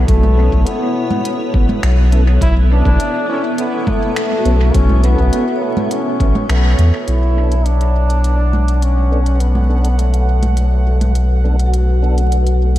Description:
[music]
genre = ambient dub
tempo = 103 BPM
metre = 4/4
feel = straight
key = B minor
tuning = A4 = 440 Hz
[part]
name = clear trombone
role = melody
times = 0.0-11.4 s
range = A3 to E4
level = -22 LUFS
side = left 1 dB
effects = dub echo
[part]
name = granular cloud pad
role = sustained chords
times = 0.0-12.8 s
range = A3 to F#5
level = -23 LUFS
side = equal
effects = built-in reverb
[part]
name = vibraphone with medium hard mallets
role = arpeggios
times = 0.0-12.8 s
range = F#4 to C#5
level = -29 LUFS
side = left 3 dB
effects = low-pass filter, dub echo
[part]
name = warm sub bass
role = bass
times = 0.0-12.8 s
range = A1 to E2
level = -12 LUFS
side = equal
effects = none
[part]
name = electronic kick drum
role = drums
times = 0.1-6.3 s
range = none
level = -18 LUFS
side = equal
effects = none
[part]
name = organic electronic drum kit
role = drums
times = 0.1-12.8 s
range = congas, finger snaps, hi-hat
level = -25 LUFS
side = right 2 dB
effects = dub echo
[part]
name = mellow tonewheel organ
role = stabs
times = 0.4-12.2 s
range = B3 to A4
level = -29 LUFS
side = right 1 dB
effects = none
[part]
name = bubbling stepped-filter texture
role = texture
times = 7.7-12.8 s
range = F#5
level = -28 LUFS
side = right 4 dB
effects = chorus, built-in reverb
[sound]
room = light reverb, digital ambience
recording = vinyl crackle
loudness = -12 LUFS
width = side -14 dB against mid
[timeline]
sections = 0.0-7.1 A section; 7.1-12.8 B section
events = band accent 6.5; filter sweep on ambient pad 7.1-12.8; filter sweep on vibraphone 7.1-12.8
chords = 0.0 Aadd9; 7.1 Bm7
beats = | 0.09 0.67 1.25 1.83 | 2.42 3.00 3.58 4.16 | 4.75 5.33 5.91 6.49 | 7.08 7.66 8.24 8.82 | 9.41 9.99 10.57 11.15 | 11.74 12.32

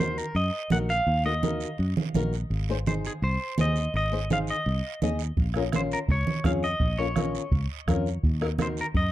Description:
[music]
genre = latin, cumbia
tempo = 168 BPM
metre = 4/4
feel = straight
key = unclear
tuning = A4 = 440 Hz
[part]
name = clean electric guitar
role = melody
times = 0.0-9.1 s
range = Ab4 to Gb5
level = -30 LUFS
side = equal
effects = spring reverb, tape echo
[part]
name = flamenco guitar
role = accompaniment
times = 0.0-8.8 s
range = Db4 to Eb5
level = -31 LUFS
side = left 5 dB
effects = none
[part]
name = fingered electric bass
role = bass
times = 0.0-9.1 s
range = Ab1 to Gb2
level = -28 LUFS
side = equal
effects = none
[part]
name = guiro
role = percussion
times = 0.0-9.1 s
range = none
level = -43 LUFS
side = right 26 dB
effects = none
[part]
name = congas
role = percussion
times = 0.7-8.8 s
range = none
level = -30 LUFS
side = right 4 dB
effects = none
[part]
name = bombo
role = percussion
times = 5.4-9.1 s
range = none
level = -28 LUFS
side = right 1 dB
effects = none
[sound]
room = little or no reverb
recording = dry, close 1970s-style studio recording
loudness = -24 LUFS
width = side -14 dB against mid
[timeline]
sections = 0.0-9.1 A section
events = none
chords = 0.0 Ebm; 2.5 Ab; 5.4 Bbm; 8.2 Ebm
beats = 0.00 0.36 0.71 | 1.07 1.43 1.79 2.15 | 2.51 2.87 3.22 3.58 | 3.94 4.30 4.66 5.02 | 5.37 5.73 6.09 6.45 | 6.81 7.17 7.52 7.88 | 8.24 8.60 8.96

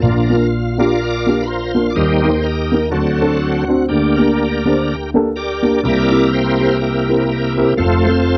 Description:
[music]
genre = uptempo gospel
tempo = 124 BPM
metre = 4/4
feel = swing 57% on 8ths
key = Bb major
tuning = A4 = 442 Hz
[part]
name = dark concert grand piano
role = accompaniment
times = 0.0-8.4 s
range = F1 to C5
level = -18 LUFS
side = equal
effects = none
[part]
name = bright tonewheel organ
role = sustained chords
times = 0.0-8.4 s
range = Bb2 to D5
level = -19 LUFS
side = equal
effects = slow rotary speaker, chorus vibrato
[sound]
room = light reverb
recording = dry, close 1970s-style studio recording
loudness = -16 LUFS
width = mono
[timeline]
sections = 0.0-8.4 A section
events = tonewheel organ solo 0.0-8.4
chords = 0.0 Bb; 2.0 Eb; 2.9 D7; 3.9 Gm/D; 5.8 C7; 7.8 F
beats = | 0.02 0.51 0.99 1.48 | 1.96 2.45 2.93 3.42 | 3.90 4.38 4.87 5.36 | 5.84 6.32 6.81 7.29 | 7.78 8.26

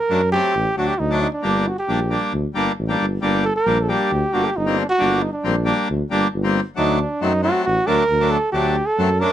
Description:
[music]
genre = klezmer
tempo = 135 BPM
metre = 4/4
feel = straight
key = G harmonic minor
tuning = A4 = 439 Hz
[part]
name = dark cornet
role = melody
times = 0.0-9.3 s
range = D4 to Bb4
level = -20 LUFS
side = right 2 dB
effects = none
[part]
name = accordion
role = accompaniment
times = 0.1-9.3 s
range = F#3 to D4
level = -22 LUFS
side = left 1 dB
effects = none
[part]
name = warm tuba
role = bass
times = 0.1-9.2 s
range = G1 to F#2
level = -22 LUFS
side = equal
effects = none
[sound]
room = light reverb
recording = close, detailed microphones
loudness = -17 LUFS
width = side -11 dB against mid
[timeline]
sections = 0.0-3.2 A section; 3.2-9.3 A section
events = none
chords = 0.0 D; 1.4 Gm; 6.8 D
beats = 0.10 0.55 0.99 | 1.44 1.89 2.33 2.78 | 3.22 3.67 4.11 4.56 | 5.00 5.45 5.89 6.33 | 6.78 7.22 7.66 8.10 | 8.54 8.98

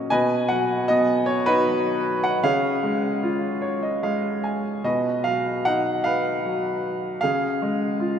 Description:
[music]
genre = classical, lyrical solo piano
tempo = 76 BPM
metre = 3/4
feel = rubato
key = unclear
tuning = A4 = 439 Hz
[part]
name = clear grand piano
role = solo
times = 0.0-8.2 s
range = B2 to G#5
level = -20 LUFS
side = equal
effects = none
[sound]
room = wet cathedral reverb, RT60 5.9 s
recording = in a vast, echoing space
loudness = -20 LUFS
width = side -8 dB against mid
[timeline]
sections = 0.0-8.2 A section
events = grand piano fill 3.2-4.8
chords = 0.1 B; 2.4 C#; 4.8 B; 7.2 C#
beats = | 0.12 0.89 1.66 | 2.43 3.22 4.03 | 4.85 5.66 6.45 | 7.24 8.01

